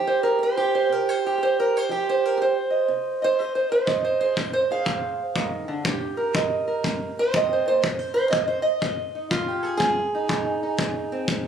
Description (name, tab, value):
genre	acoustic country blues, solo or duo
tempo	121 BPM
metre	4/4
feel	swing 65% on 8ths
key	unclear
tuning	A4 = 440 Hz
part	fingerpicked acoustic archtop guitar	melody	0.0-11.5 s	G2 to F5	-22 LUFS	right 2 dB	none
part	kick drum	drums	3.9-11.4 s	none	-27 LUFS	left 2 dB	none
room	light reverb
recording	recorded on a phone in the room, club reverb, compression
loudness	-21 LUFS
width	side -8 dB against mid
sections	0.0-11.5 A section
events	none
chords	0.0 Fm9; 5.8 Cm7; 7.8 Ab